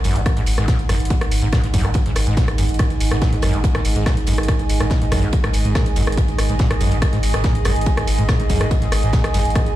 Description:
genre	driving peak-time techno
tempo	142 BPM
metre	4/4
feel	straight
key	unclear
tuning	A4 = 441 Hz
part	screaming distorted acid line	riff	0.0-9.6 s	F#2 to A#2	-23 LUFS	equal	distortion, lush chorus, sidechain pumping, tape echo
part	saturated sub bass	bass	0.0-9.8 s	G#1	-21 LUFS	equal	tube saturation, sidechain pumping, low-pass filter
part	metallic inharmonic drone	drone	0.0-9.8 s	G#2	-27 LUFS	right 4 dB	chorus, built-in reverb, sidechain pumping
part	punchy analog drum machine	drums	0.0-9.7 s	hi-hat, rim click	-26 LUFS	left 1 dB	sidechain pumping on hats, sidechain pumping on cymbals
part	tight funk drum kit	drums	0.0-9.7 s	ride cymbal, snare drum	-35 LUFS	right 3 dB	high-pass filter on cymbals, high-pass filter on snare, high-pass filter on room
part	warbly tape-like pad	texture	0.0-9.8 s	G#4 to G#5	-28 LUFS	right 2 dB	chorus, built-in reverb, sidechain pumping
part	electronic kick drum	drums	0.3-9.6 s	none	-19 LUFS	equal	none
room	little or no reverb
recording	played on a big sound system in a bare room, stone room reverb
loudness	-16 LUFS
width	side -14 dB against mid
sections	0.0-9.8 A section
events	fade-in on ambient pad 0.0-9.8; filter sweep on acid bass 0.0-9.8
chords	0.0 G#5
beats	0.26 0.68 | 1.10 1.53 1.95 2.37 | 2.79 3.22 3.64 4.06 | 4.48 4.91 5.33 5.75 | 6.17 6.60 7.02 7.44 | 7.86 8.29 8.71 9.13 | 9.55

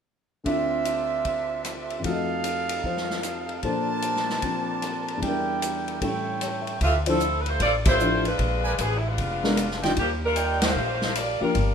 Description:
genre	jazz, big band swing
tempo	151 BPM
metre	4/4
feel	swing 65% on 8ths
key	D minor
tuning	A4 = 440 Hz
part	dark upright piano	accompaniment	0.4-11.5 s	D2 to E5	-28 LUFS	left 3 dB	none
part	clear trumpet section	stabs	0.5-11.0 s	D4 to D6	-28 LUFS	right 4 dB	none
part	swinging big-band drum kit	drums	0.5-11.7 s	hi-hat, kick drum, ride cymbal, rim click, snare drum	-30 LUFS	left 1 dB	none
part	mellow saxophone section	melody	6.8-11.7 s	E3 to D5	-25 LUFS	equal	none
part	upright bass	bass	6.8-11.7 s	F1 to Eb2	-27 LUFS	equal	none
room	moderate large studio reverb, RT60 1.1 s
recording	minimal, uncompressed stereo recording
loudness	-23 LUFS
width	side -7 dB against mid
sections	0.5-6.8 A section; 6.8-11.7 B section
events	band accent 7.8, 10.6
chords	0.5 Dm9; 2.0 F7b9; 3.6 Bbmaj9; 5.2 Em7b5; 6.0 A7; 6.8 Dm9; 8.4 Bb7b9; 10.0 Ebmaj9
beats	| 0.46 0.86 1.26 1.65 | 2.05 2.44 2.84 3.24 | 3.63 4.03 4.43 4.83 | 5.22 5.62 6.01 6.41 | 6.81 7.20 7.60 8.00 | 8.39 8.79 9.18 9.58 | 9.97 10.37 10.76 11.16 | 11.55

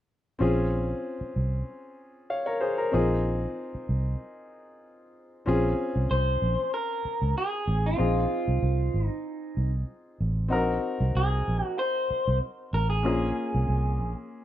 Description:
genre	lush 1970s-style soul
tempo	95 BPM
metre	4/4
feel	swing 54% on 16ths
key	Bb minor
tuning	A4 = 438 Hz
part	clear grand piano	accompaniment	0.4-14.4 s	Bb3 to F5	-29 LUFS	left 2 dB	none
part	vintage muted fingered electric bass	bass	0.4-14.1 s	Ab1 to Db2	-26 LUFS	right 1 dB	none
part	electric guitar through a small old amp	melody	6.1-14.1 s	F4 to C5	-29 LUFS	equal	none
room	small room ambience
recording	rough home demo mix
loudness	-25 LUFS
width	side -12 dB against mid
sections	0.4-5.5 A section; 5.5-14.4 B section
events	none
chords	0.4 Bbm9; 2.9 Fm7/Bb; 5.5 Bbm9; 8.0 Fm7; 10.5 Ab7/Bb; 13.0 Bbm9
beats	| 0.40 1.04 1.67 2.30 | 2.93 3.56 4.20 4.83 | 5.46 6.09 6.72 7.35 | 7.99 8.62 9.25 9.88 | 10.51 11.14 11.78 12.41 | 13.04 13.68 14.31

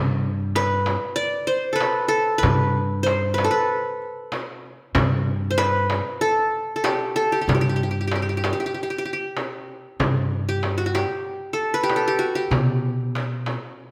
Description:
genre	Arabic maqam ensemble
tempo	95 BPM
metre	4/4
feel	straight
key	G maqam ajam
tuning	A4 = 439 Hz
part	qanun	melody	0.0-13.6 s	F#4 to D5	-25 LUFS	equal	none
part	upright bass	bass	0.0-13.5 s	G2 to B2	-27 LUFS	equal	none
part	darbuka	percussion	0.2-13.9 s	none	-30 LUFS	equal	none
part	frame drum	percussion	0.6-13.6 s	none	-30 LUFS	equal	none
room	wet recital hall reverb, RT60 1.5 s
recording	none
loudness	-23 LUFS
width	mono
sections	0.0-10.0 A section; 10.0-13.9 B section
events	none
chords	none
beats	0.56 1.19 1.82 | 2.45 3.08 3.71 4.33 | 4.96 5.59 6.22 6.85 | 7.48 8.11 8.74 9.37 | 10.00 10.63 11.26 11.89 | 12.52 13.15 13.78

